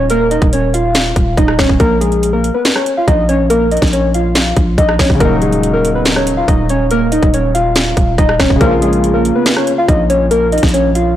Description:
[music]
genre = hip hop, trap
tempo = 141 BPM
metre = 4/4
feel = half-time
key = Eb minor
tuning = A4 = 437 Hz
[part]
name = warbly lo-fi synth keys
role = melody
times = 0.0-11.2 s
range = Ab3 to F5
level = -14 LUFS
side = equal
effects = chorus
[part]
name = growling 808-style bass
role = bass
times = 0.0-11.2 s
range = Eb1 to Bb1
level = -16 LUFS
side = equal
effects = none
[part]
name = trap drum kit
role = drums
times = 0.1-11.1 s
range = finger snaps, hi-hat, kick drum, rim click, snare drum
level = -14 LUFS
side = equal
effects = overdrive
[part]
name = dark concert grand piano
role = accompaniment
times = 5.1-11.2 s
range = Db3 to F4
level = -19 LUFS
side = left 3 dB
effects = none
[part]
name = warm brass ensemble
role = stabs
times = 5.2-5.5, 8.6-8.9 s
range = Db2 to Gb3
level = -25 LUFS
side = right 2 dB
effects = none
[sound]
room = light reverb, digital ambience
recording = blown-out, overdriven recording, overdrive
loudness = -10 LUFS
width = side -12 dB against mid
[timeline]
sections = 0.0-5.2 A section; 5.2-11.2 B section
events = none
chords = 0.0 Eb5; 1.8 Bbm; 5.2 Ebm7; 8.6 Bbm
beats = | 0.10 0.52 0.95 1.38 | 1.80 2.23 2.65 3.08 | 3.50 3.93 4.35 4.78 | 5.21 5.63 6.06 6.48 | 6.91 7.33 7.76 8.18 | 8.61 9.03 9.46 9.88 | 10.31 10.74 11.16

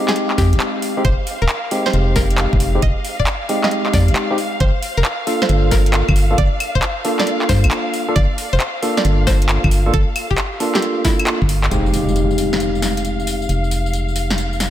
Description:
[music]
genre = UK garage, two-step garage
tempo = 135 BPM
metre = 4/4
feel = swing 67% on 16ths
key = F dorian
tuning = A4 = 440 Hz
[part]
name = dark studio violin section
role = sustained chords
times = 0.0-14.7 s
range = F5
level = -27 LUFS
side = left 1 dB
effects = sidechain pumping
[part]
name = barky tine electric piano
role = stabs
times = 0.0-14.7 s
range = Ab3 to A4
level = -21 LUFS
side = equal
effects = lush chorus, low-pass filter, tape echo
[part]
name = string-like resonator pluck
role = melody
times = 0.1-11.2 s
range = E4 to Eb5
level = -25 LUFS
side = equal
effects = chorus, tape echo
[part]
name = garage drum kit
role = drums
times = 0.1-14.7 s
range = claves, handclaps, hi-hat, snare drum, tambourine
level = -22 LUFS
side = equal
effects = none
[part]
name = organ-like FM bass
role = bass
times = 0.4-14.7 s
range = Eb1 to G2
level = -17 LUFS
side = equal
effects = sidechain pumping
[part]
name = electronic kick drum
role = drums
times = 0.4-11.5 s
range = none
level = -19 LUFS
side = equal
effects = none
[part]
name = impact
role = sound effects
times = 11.7-13.5 s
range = none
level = -25 LUFS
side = equal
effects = none
[sound]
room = light reverb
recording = none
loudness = -15 LUFS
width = side -12 dB against mid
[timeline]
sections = 0.0-11.7 A section; 11.7-14.7 B section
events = filter sweep on tine electric piano 0.0-11.7; drum fill 11.3-11.7; impact 11.7-13.5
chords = 0.0 Fm9; 4.6 Gm9; 11.7 Fm9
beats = 0.16 0.60 | 1.05 1.49 1.94 2.38 | 2.83 3.27 3.71 4.16 | 4.60 5.05 5.49 5.94 | 6.38 6.83 7.27 7.71 | 8.16 8.60 9.05 9.49 | 9.94 10.38 10.82 11.27 | 11.71 12.16 12.60 13.05 | 13.49 13.94 14.38

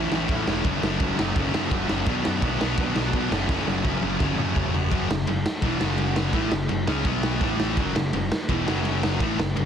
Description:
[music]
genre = punk rock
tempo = 168 BPM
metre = 4/4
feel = straight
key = F# minor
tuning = A4 = 440 Hz
[part]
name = raw garage guitar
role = riff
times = 0.0-9.7 s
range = E2 to E4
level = -30 LUFS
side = right 14 dB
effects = overdrive
[part]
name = sludgy distorted guitar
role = riff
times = 0.0-9.7 s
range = E2 to C#4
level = -28 LUFS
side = left 9 dB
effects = overdrive
[part]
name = tight distorted guitar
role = riff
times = 0.0-9.7 s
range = E2 to E4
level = -31 LUFS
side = left 1 dB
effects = distortion
[part]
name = picked electric bass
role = bass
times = 0.0-9.7 s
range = E1 to B2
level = -30 LUFS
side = equal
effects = none
[part]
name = raw garage drum kit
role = drums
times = 0.1-9.6 s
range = kick drum, ride cymbal, snare drum, toms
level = -26 LUFS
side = equal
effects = none
[sound]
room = little or no reverb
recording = dense, heavily limited modern master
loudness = -22 LUFS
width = side -8 dB against mid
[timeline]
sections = 0.0-4.9 A section; 4.9-9.7 B section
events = drum fill 3.5-4.9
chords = 0.0 A; 0.7 F#m; 2.1 Bm; 3.3 F#m; 7.1 B5; 7.4 A5; 7.8 F#m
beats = 0.30 | 0.65 1.01 1.36 1.72 | 2.07 2.43 2.78 3.14 | 3.50 3.85 4.21 4.56 | 4.92 5.28 5.63 5.99 | 6.35 6.70 7.06 7.42 | 7.77 8.13 8.49 8.85 | 9.20 9.56

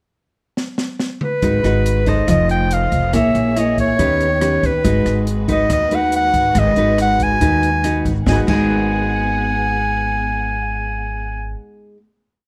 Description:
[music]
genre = bossa nova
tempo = 140 BPM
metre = 4/4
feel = straight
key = G# minor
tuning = A4 = 440 Hz
[part]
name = open jazz drum kit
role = drums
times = 0.6-8.6 s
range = crash cymbal, hi-hat, kick drum, rim click, snare drum, toms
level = -26 LUFS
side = equal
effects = none
[part]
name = bright clarinet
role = melody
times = 1.2-11.6 s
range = B4 to G#5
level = -21 LUFS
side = equal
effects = none
[part]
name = nylon-string guitar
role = accompaniment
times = 1.4-12.0 s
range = D#3 to C#5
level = -22 LUFS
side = equal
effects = none
[part]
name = dark studio string section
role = sustained chords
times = 1.4-11.3 s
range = G#3 to F#5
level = -32 LUFS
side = equal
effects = none
[part]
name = upright bass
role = bass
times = 1.4-11.5 s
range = F1 to D#2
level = -23 LUFS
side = equal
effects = none
[sound]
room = light reverb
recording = none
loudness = -17 LUFS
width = mono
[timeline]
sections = 0.0-1.4 pickup bar; 1.4-8.3 A section; 8.3-11.7 final chord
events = drum fill 0.6-1.4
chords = 0.0 N.C.; 1.4 G#m7; 2.3 F7; 3.1 A#m7b5; 4.0 D#7b13; 4.8 G#m7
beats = 0.14 0.56 0.99 | 1.42 1.85 2.28 2.71 | 3.13 3.56 3.99 4.42 | 4.84 5.27 5.70 6.12 | 6.55 6.98 7.41 7.83 | 8.26 8.69 9.12 9.54 | 9.97 10.40 10.83 11.26

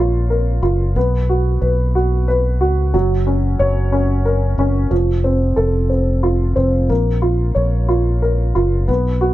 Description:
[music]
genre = six-eight pop ballad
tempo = 60 BPM (dotted quarters)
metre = 6/8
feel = straight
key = unclear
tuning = A4 = 441 Hz
[part]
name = warm upright piano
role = accompaniment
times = 0.0-9.3 s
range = F3 to C#5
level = -18 LUFS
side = equal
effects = plate reverb
[part]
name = fingered electric bass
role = bass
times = 0.0-9.3 s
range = F1 to C#2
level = -16 LUFS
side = equal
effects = none
[sound]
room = light reverb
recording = dark, warm production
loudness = -14 LUFS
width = side -15 dB against mid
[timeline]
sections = 0.0-9.3 A section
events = none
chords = 0.0 A#m; 1.0 B5; 2.9 F#; 4.9 F; 6.9 A#m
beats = | 0.96 1.95 | 2.94 3.92 | 4.91 5.90 | 6.90 7.89 | 8.89

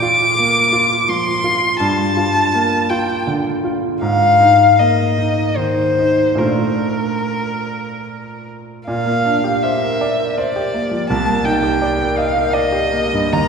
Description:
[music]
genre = classical, impressionist duo for violin and grand piano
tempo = 69-87 BPM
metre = 3/4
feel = rubato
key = Bb major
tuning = A4 = 441 Hz
[part]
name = warm violin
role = melody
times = 0.0-13.5 s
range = Bb4 to D6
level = -16 LUFS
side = left 2 dB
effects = none
[part]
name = clear grand piano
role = accompaniment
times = 0.0-13.5 s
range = C2 to Eb5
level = -18 LUFS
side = right 1 dB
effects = none
[sound]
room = wet concert hall reverb, RT60 2.1 s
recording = heard from further back in the room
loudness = -14 LUFS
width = side -6 dB against mid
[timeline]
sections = 0.0-8.9 A section; 8.9-13.5 B section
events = none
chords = 0.0 Bbadd9; 1.8 Gm7; 4.0 Abadd9; 6.4 Bbmaj9; 8.9 Bb69; 11.1 Cm9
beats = 0.39 1.08 | 1.80 2.54 3.27 | 4.02 4.79 5.57 | 6.40 7.26 8.08 | 8.88 9.63 10.37 | 11.09 11.81 12.54 | 13.33

